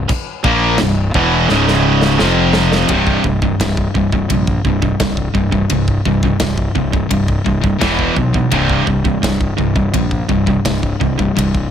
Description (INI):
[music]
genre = heavy metal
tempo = 85 BPM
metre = 4/4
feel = straight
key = C phrygian dominant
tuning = A4 = 440 Hz
[part]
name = distorted electric guitar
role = riff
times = 0.0-11.7 s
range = C2 to Bb3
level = -19 LUFS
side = right 9 dB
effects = overdrive
[part]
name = sludgy distorted guitar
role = riff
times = 0.0-11.7 s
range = C2 to Bb3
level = -18 LUFS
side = left 7 dB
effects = overdrive
[part]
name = tight distorted guitar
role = riff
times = 0.0-2.9 s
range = C2 to Bb3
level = -18 LUFS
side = equal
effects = distortion
[part]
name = fuzz fingered electric bass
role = bass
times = 0.0-11.6 s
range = C1 to B1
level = -19 LUFS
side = equal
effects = overdrive
[part]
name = modern studio drum kit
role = drums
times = 0.1-11.7 s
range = china cymbal, kick drum, ride cymbal, snare drum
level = -20 LUFS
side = equal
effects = none
[sound]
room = small room reverb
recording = none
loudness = -12 LUFS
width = side -9 dB against mid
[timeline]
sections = 0.0-2.9 A section; 2.9-11.7 B section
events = drum fill 1.5-2.9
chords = 0.0 C; 1.5 Db5; 2.2 F5; 2.9 C5; 7.8 E5; 8.5 C5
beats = | 0.09 0.79 1.49 2.19 | 2.89 3.59 4.29 5.00 | 5.70 6.41 7.11 7.82 | 8.53 9.23 9.94 10.65 | 11.36